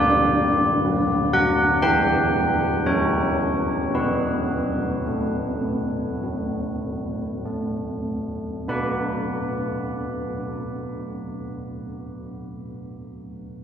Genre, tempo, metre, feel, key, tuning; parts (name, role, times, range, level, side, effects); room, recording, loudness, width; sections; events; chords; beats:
classical, tune for church bells; 46-63 BPM; 4/4; straight; B minor; A4 = 440 Hz
old church bells; solo; 0.0-11.9 s; D3 to B5; -21 LUFS; equal
wet cathedral reverb, RT60 7.5 s; -21 LUFS; side -8 dB against mid
0.0-8.7 A section; 8.7-13.6 B section
slowing down 0.0-8.7
0.0 Bm/D; 1.8 Em; 2.9 F#; 3.9 B5; 8.7 Bm
0.86 1.84 2.86 | 3.93 5.06 6.23 7.44 | 8.70 9.96 11.23